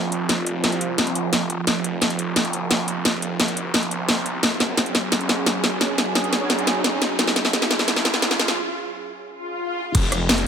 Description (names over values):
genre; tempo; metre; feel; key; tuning
dark technical drum and bass; 174 BPM; 4/4; straight; F phrygian; A4 = 440 Hz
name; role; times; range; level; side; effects
sweeping resonant pad; sustained chords; 0.0-9.9 s; F3 to Ab4; -28 LUFS; right 4 dB; chorus, sidechain pumping
snarling distorted saw bass; bass; 0.0-10.5 s; F1 to Db2; -28 LUFS; equal; distortion, overdrive, high-pass filter
riser and swell; sound effects; 1.9-9.9 s; none; -30 LUFS; equal; none
drum and bass drum kit; drums; 0.1-10.4 s; crash cymbal, hi-hat, rim click, snare drum; -20 LUFS; equal; none
breakbeat sampler-style drum kit; drums; 9.9-10.5 s; hi-hat, snare drum; -31 LUFS; left 1 dB; none
electronic kick drum; drums; 9.9-10.0 s; none; -18 LUFS; equal; none
room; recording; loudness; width
moderate lush hall reverb, RT60 1.9 s; high-pass filter; -19 LUFS; side -7 dB against mid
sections
0.0-9.9 A section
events
build-up 0.0-9.9; drum fill 0.0-8.6; filter sweep on analog synth pad 0.0-9.9; riser 1.9-8.6; break 8.6-9.9; swell 9.3-9.9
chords
0.0 F5; 4.4 Gb5; 9.9 F5